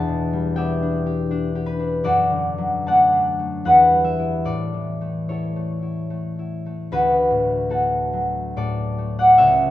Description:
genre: classical, solo harp piece.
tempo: 74 BPM.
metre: 3/4.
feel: uneven beats, rubato.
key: D major.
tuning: A4 = 440 Hz.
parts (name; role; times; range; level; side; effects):
concert harp; solo; 0.0-9.7 s; C#2 to B5; -17 LUFS; left 1 dB; none.
room: moderate large studio reverb, RT60 1.4 s.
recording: dark, warm production.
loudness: -17 LUFS.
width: side -14 dB against mid.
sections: 0.0-6.9 A section; 6.9-9.7 B section.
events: none.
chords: 0.0 Em7; 2.0 D/F#; 3.6 Em; 4.4 A; 6.9 D.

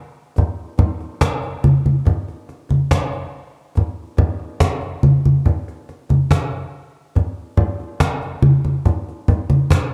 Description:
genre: reggae.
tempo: 71 BPM.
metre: 4/4.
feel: straight.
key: none.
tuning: none.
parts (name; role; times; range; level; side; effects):
cajon; drums; 0.4-9.9 s; none; -21 LUFS; equal; none.
congas; percussion; 0.4-9.7 s; none; -17 LUFS; equal; none.
room: light reverb.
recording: dark, warm production.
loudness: -19 LUFS.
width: mono.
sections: 0.0-9.9 A section.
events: none.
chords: none.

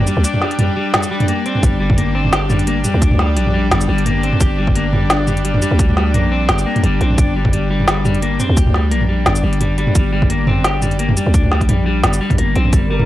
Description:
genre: half-time drum and bass.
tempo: 173 BPM.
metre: 4/4.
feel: swing 55% on 16ths, half-time.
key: G minor.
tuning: A4 = 441 Hz.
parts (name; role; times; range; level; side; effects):
rich chamber string section; sustained chords; 0.0-13.1 s; G3 to G5; -24 LUFS; right 1 dB; sidechain pumping.
growling 808-style bass; bass; 0.0-13.1 s; G1 to D2; -17 LUFS; equal; none.
clean electric guitar; arpeggios; 0.1-13.1 s; G3 to G4; -20 LUFS; left 3 dB; analog delay.
organic electronic drum kit; drums; 0.1-13.1 s; hi-hat, shaker, snare drum, toms; -18 LUFS; equal; none.
electronic kick drum; drums; 1.6-12.8 s; none; -16 LUFS; equal; overdrive.
flickering grainy texture; texture; 12.8-13.1 s; Bb4; -24 LUFS; right 3 dB; built-in reverb.
room: digital ambience.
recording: dry, gritty hardware recording, cassette tape.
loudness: -13 LUFS.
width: side -14 dB against mid.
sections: 0.0-12.7 A section.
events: drop 0.0-12.7.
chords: 0.0 G5.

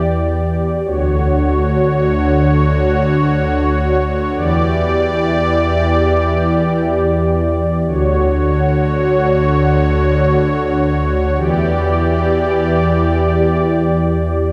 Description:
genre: hip hop.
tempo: free time.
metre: none.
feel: none.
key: D major.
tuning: A4 = 441 Hz.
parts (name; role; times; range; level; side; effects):
warm analog pad; solo; 0.0-14.5 s; D2 to D5; -15 LUFS; equal; chorus, tape echo.
room: moderate lush hall reverb, RT60 2.9 s.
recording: none.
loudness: -15 LUFS.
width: mono.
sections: 0.9-14.5 A section.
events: none.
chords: 0.0 Em7; 0.9 Dmaj7; 4.4 Em7; 7.9 Dmaj7; 11.4 Em7.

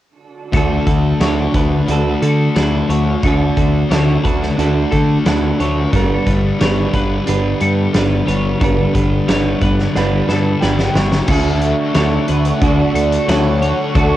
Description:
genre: rock, shoegaze and dream pop.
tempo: 90 BPM.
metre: 4/4.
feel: straight.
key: D major.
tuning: A4 = 440 Hz.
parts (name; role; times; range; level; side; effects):
twelve-string electric guitar; arpeggios; 0.5-14.2 s; A4 to C#5; -26 LUFS; left 2 dB; lush chorus, analog delay.
overdriven semi-hollow guitar; riff; 0.5-14.2 s; D3 to B4; -20 LUFS; right 6 dB; reverse reverb.
thick fuzz guitar; riff; 0.5-14.2 s; G2 to D4; -20 LUFS; left 6 dB; distortion, lush chorus.
growling picked electric bass; bass; 0.5-14.2 s; G1 to D3; -18 LUFS; equal; overdrive.
huge arena drum kit; drums; 0.5-14.1 s; crash cymbal, hi-hat, kick drum, snare drum; -19 LUFS; equal; cassette tape.
warm velvety synth lead; melody; 10.6-14.2 s; A4 to G5; -22 LUFS; equal; chorus, cassette tape, analog delay.
airy breathy pad; sustained chords; 11.5-14.2 s; D4 to C#6; -25 LUFS; right 1 dB; chorus, phaser.
room: light reverb.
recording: home recording on cassette.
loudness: -13 LUFS.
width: side -13 dB against mid.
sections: 0.5-11.3 A section; 11.3-14.2 B section.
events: drum fill 10.0-11.3.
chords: 0.5 Dmaj7; 5.9 Gadd9; 11.3 Dmaj7.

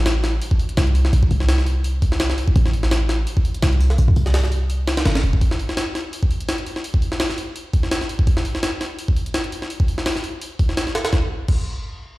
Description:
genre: drum and bass, jungle.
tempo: 168 BPM.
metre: 4/4.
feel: swing 55% on 16ths.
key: A minor.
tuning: A4 = 441 Hz.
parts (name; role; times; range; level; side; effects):
warm 808-style bass; bass; 0.0-5.4 s; E1 to C2; -18 LUFS; equal; none.
jungle sampler-style drum kit; drums; 0.1-11.6 s; crash cymbal, hi-hat, kick drum, snare drum; -20 LUFS; equal; none.
room: digital ambience.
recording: played on a big sound system in a bare room, large studio reverb.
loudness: -18 LUFS.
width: side -19 dB against mid.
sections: 0.0-11.1 A section; 11.1-12.2 B section.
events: none.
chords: none.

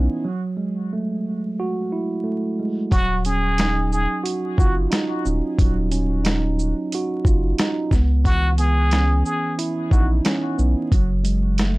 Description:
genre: hip hop, boom-bap hip-hop.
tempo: 90 BPM.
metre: 4/4.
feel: swing 57% on 16ths.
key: Eb phrygian.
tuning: A4 = 438 Hz.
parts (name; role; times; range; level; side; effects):
mellow tine electric piano; accompaniment; 0.0-11.8 s; Fb3 to Gb4; -24 LUFS; right 2 dB; high-pass filter, low-pass filter.
soft dub sub bass; bass; 0.0-11.8 s; Eb1 to Db2; -20 LUFS; equal; none.
trumpet with plunger mute; melody; 2.9-10.1 s; Gb4 to Ab4; -26 LUFS; left 1 dB; high-pass filter, low-pass filter, ping-pong delay.
dusty soul sampler-style drum kit; drums; 2.9-11.8 s; hi-hat, kick drum, shaker, snare drum; -20 LUFS; equal; vintage 12-bit sampler grit.
room: little or no reverb.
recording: vinyl crackle.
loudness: -18 LUFS.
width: side -21 dB against mid.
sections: 0.0-11.8 A section.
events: break 0.0-2.9.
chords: 0.2 Gbm9; 2.9 Ebm9; 7.9 Dbm9; 10.9 Gbmadd9.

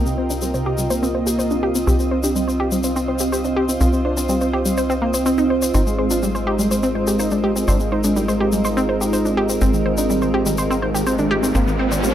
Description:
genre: melodic techno.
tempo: 124 BPM.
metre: 4/4.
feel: straight.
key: C minor.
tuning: A4 = 440 Hz.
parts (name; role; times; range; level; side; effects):
dark analog pad; sustained chords; 0.0-12.1 s; Ab3 to G5; -25 LUFS; right 1 dB; chorus.
analog pluck; arpeggios; 0.0-12.1 s; G3 to C5; -23 LUFS; equal; chorus, analog delay.
tight sequencer bass; bass; 0.0-12.1 s; Ab1 to C2; -24 LUFS; equal; none.
granular cloud pad; texture; 0.0-12.1 s; C4 to Eb5; -25 LUFS; right 1 dB; built-in reverb.
fat analog lead; melody; 0.1-12.1 s; C3 to G4; -24 LUFS; equal; chorus, analog delay.
tube shaker; percussion; 0.1-12.1 s; none; -29 LUFS; left 5 dB; none.
riser; sound effects; 10.4-12.1 s; none; -26 LUFS; right 1 dB; none.
room: light reverb.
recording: dry, gritty hardware recording.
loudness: -17 LUFS.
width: side -11 dB against mid.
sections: 0.0-12.1 A section.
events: filter sweep on synth arpeggio sound 0.0-12.1; riser 10.4-12.1.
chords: 0.0 Cm; 5.7 Ab.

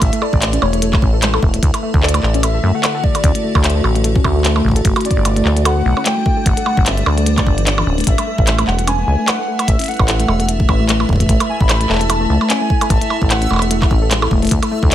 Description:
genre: IDM.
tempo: 149 BPM.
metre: 4/4.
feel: swing 56% on 16ths.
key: unclear.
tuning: A4 = 441 Hz.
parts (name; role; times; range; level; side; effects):
warbly nostalgic lead; melody; 0.0-14.9 s; C#5 to B5; -23 LUFS; equal; tremolo, lush chorus, tape echo.
icy glass pad; sustained chords; 0.0-14.9 s; D3 to E5; -24 LUFS; left 3 dB; chorus, built-in reverb, vintage 12-bit sampler grit.
warbly dusty pluck; arpeggios; 0.0-14.9 s; E3 to A4; -21 LUFS; left 1 dB; chorus, tape echo.
deep acid bass; bass; 0.0-14.9 s; D1 to F#2; -17 LUFS; equal; tube saturation.
electronic kick drum; drums; 0.0-14.9 s; none; -16 LUFS; equal; studio reverb.
glitchy drum kit; drums; 0.0-14.9 s; handclaps, hi-hat, percussion blips; -20 LUFS; right 2 dB; studio reverb.
backwards swelling texture; texture; 8.8-14.9 s; E5; -29 LUFS; right 2 dB; built-in reverb, sidechain pumping.
room: light reverb.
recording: none.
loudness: -12 LUFS.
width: side -12 dB against mid.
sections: 0.0-14.9 A section.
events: kick drops out 7.7-8.1.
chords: 0.0 A; 1.6 D6; 4.8 Gmaj7; 8.1 A5.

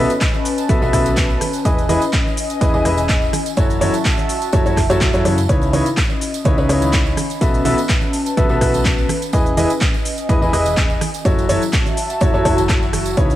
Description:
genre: piano house.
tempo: 125 BPM.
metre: 4/4.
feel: swing 53% on 16ths.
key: unclear.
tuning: A4 = 440 Hz.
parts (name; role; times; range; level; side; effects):
clear upright piano; riff; 0.0-13.4 s; C#3 to E5; -19 LUFS; equal; sidechain pumping, cassette tape, tape echo.
solid FM bass; bass; 0.0-13.4 s; E1 to F#2; -22 LUFS; equal; sidechain pumping.
warbly tape-like pad; texture; 0.0-13.4 s; C#4 to B5; -23 LUFS; left 1 dB; chorus, built-in reverb, sidechain pumping, cassette tape.
house drum kit; drums; 0.1-13.4 s; handclaps, hi-hat, rim click, shaker; -24 LUFS; equal; small room ambience, cassette tape.
tambourine and congas; percussion; 0.1-13.4 s; none; -30 LUFS; right 9 dB; none.
electronic kick drum; drums; 0.2-13.3 s; none; -18 LUFS; equal; small room ambience, cassette tape.
room: light reverb, digital ambience.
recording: home recording on cassette.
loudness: -14 LUFS.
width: side -13 dB against mid.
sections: 0.0-13.4 A section.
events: none.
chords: 0.0 B7sus4; 1.4 Emaj7; 3.3 F#m7; 5.5 C#m9; 7.2 B7sus4; 9.1 Emaj7; 11.0 F#m7.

